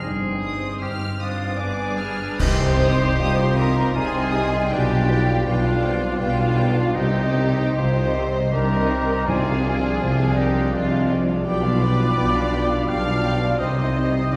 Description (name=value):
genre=classical, slow romantic movement for symphony orchestra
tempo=70-86 BPM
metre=3/4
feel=rubato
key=C minor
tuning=A4 = 440 Hz
part: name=warm symphonic violin section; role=melody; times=0.0-14.4 s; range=C5 to F6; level=-36 LUFS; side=equal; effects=none
part: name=clear oboe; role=second line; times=0.0-14.4 s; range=D4 to D5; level=-33 LUFS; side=equal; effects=none
part: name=rich symphonic violin section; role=second line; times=0.0-14.4 s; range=C4 to F5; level=-31 LUFS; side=equal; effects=none
part: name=rich symphonic viola section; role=accompaniment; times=0.0-14.4 s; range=B3 to C5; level=-35 LUFS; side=equal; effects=none
part: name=mellow French horn section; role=sustained chords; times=0.0-14.4 s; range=F3 to F4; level=-33 LUFS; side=equal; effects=none
part: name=concert harp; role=arpeggios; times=0.0-14.4 s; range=G2 to Eb5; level=-31 LUFS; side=equal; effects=none
part: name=rich symphonic double bass section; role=bass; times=0.0-14.4 s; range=G1 to C2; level=-29 LUFS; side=equal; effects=none
part: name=warm symphonic cello section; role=bass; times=0.0-14.4 s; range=G2 to C3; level=-29 LUFS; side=equal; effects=none
part: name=silver concert flute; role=second line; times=1.2-14.4 s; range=F5 to F6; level=-34 LUFS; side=equal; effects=none
part: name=mellow bassoon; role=accompaniment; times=2.4-14.4 s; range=G3 to F4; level=-32 LUFS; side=equal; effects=none
part: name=mellow tuba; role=bass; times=2.4-14.4 s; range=B1 to C2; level=-28 LUFS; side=equal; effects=none
part: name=clash cymbals and concert bass drum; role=percussion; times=2.4-3.9 s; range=none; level=-28 LUFS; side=equal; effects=none
part: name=timpani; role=percussion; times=9.3-10.3 s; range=C3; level=-32 LUFS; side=equal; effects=none
room=wet concert hall reverb, RT60 1.9 s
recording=heard from further back in the room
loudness=-21 LUFS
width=mono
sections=0.0-2.4 A section; 2.4-14.4 B section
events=band accent 2.4-3.2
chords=0.0 Cm/G; 1.6 G; 2.4 Cm; 4.7 G7/B; 7.0 Cm; 9.3 Dm7b5/C; 11.5 G7/B; 13.6 Cm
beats=| 0.03 0.82 1.60 | 2.40 3.19 3.95 | 4.72 5.47 6.20 | 6.96 7.78 8.52 | 9.27 10.00 10.75 | 11.46 12.16 12.88 | 13.59 14.31